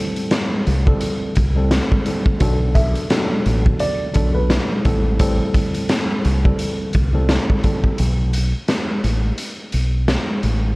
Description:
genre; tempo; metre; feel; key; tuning
hip hop, boom-bap hip-hop; 86 BPM; 4/4; swing 58% on 16ths; unclear; A4 = 440 Hz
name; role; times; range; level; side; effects
mellow tine electric piano; accompaniment; 0.0-8.0 s; A2 to A4; -23 LUFS; equal; medium stereo tremolo, cassette tape, high-pass filter, low-pass filter
raw garage drum kit; drums; 0.2-10.6 s; hi-hat, kick drum, snare drum; -19 LUFS; equal; none
deep dub fingered electric bass; bass; 0.7-10.8 s; A1 to C2; -18 LUFS; equal; none
dark upright piano; melody; 2.7-5.2 s; B4 to E5; -26 LUFS; right 1 dB; high-pass filter, low-pass filter, digital delay
room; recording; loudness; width
light reverb; worn, warbling old tape, cassette tape, warbly pitch drift; -16 LUFS; side -23 dB against mid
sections
0.0-8.0 A section; 8.0-10.8 B section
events
break 8.0-10.8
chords
0.0 Am7; 2.4 Bm7; 4.8 Am7; 8.0 N.C.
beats
0.31 1.01 1.71 | 2.41 3.10 3.80 4.50 | 5.20 5.89 6.59 7.29 | 7.99 8.69 9.38 10.08

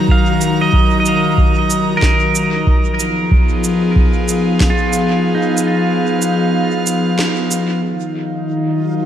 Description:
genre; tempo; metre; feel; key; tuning
ambient dub; 93 BPM; 4/4; swing 56% on 16ths; Eb minor; A4 = 444 Hz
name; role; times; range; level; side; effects
airy breathy pad; sustained chords; 0.0-9.1 s; Eb3 to Bb5; -16 LUFS; left 1 dB; chorus
pedal steel guitar; arpeggios; 0.1-6.7 s; Eb4 to F5; -20 LUFS; right 4 dB; low-pass filter, tape echo
electronic kick drum; drums; 0.1-4.8 s; none; -14 LUFS; equal; none
electronic shaker and snare drum; drums; 0.4-7.7 s; none; -22 LUFS; right 2 dB; dub echo
backwards swelling texture; texture; 8.3-9.1 s; F4 to F5; -31 LUFS; right 4 dB; built-in reverb
room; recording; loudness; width
moderate plate reverb, RT60 2.4 s; dreamy mix soaked in reverb; -13 LUFS; side -10 dB against mid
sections
0.0-7.8 A section; 7.8-9.1 B section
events
kick drops out 5.2-7.8; band accent 7.2-7.5; filter sweep on analog synth pad 7.8-9.1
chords
0.0 Ebm; 2.7 Fm7b5; 7.8 Ebm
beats
| 0.09 0.73 1.38 2.02 | 2.67 3.31 3.96 4.61 | 5.25 5.89 6.54 7.18 | 7.83 8.48

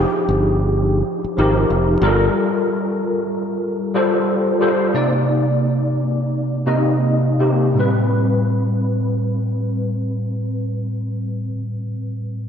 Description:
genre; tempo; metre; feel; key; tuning
R&B; 80-94 BPM; 4/4; swing 57% on 16ths; unclear; A4 = 440 Hz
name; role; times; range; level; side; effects
overdriven tine electric piano; accompaniment; 0.0-12.5 s; A2 to Eb5; -17 LUFS; equal; ensemble chorus
fingered electric bass; bass; 0.0-2.3 s; F1 to Ab1; -18 LUFS; equal; none
room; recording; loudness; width
wet lush hall reverb, RT60 2.2 s; bright 1980s-style digital production; -17 LUFS; side -8 dB against mid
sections
0.0-7.8 A section; 7.8-10.8 B section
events
slowing down 2.3-7.8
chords
0.0 Fm9; 2.0 Gm9; 4.9 Cm9; 7.8 Am9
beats
0.41 1.05 1.68 | 2.32 2.96 3.61 4.26 | 4.93 5.61 6.30 7.02 | 7.76 8.51 9.26 10.01

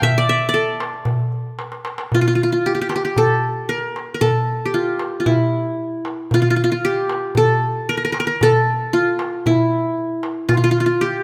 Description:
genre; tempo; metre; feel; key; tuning
Arabic maqam ensemble; 115 BPM; 4/4; straight; unclear; A4 = 440 Hz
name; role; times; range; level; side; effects
qanun; melody; 0.0-11.2 s; E4 to A5; -20 LUFS; equal; none
darbuka; percussion; 0.0-11.1 s; none; -24 LUFS; equal; none
clear clarinet; second line; 10.5-11.2 s; F4 to G4; -26 LUFS; equal; none
room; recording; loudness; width
moderate scoring stage reverb, RT60 1.8 s; none; -19 LUFS; mono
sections
0.0-2.1 A section; 2.1-11.2 B section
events
drum fill 1.6-2.1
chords
none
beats
| 0.02 0.55 1.07 1.59 | 2.12 2.64 3.17 3.69 | 4.21 4.74 5.26 5.79 | 6.31 6.83 7.36 7.88 | 8.40 8.93 9.45 9.97 | 10.50 11.02

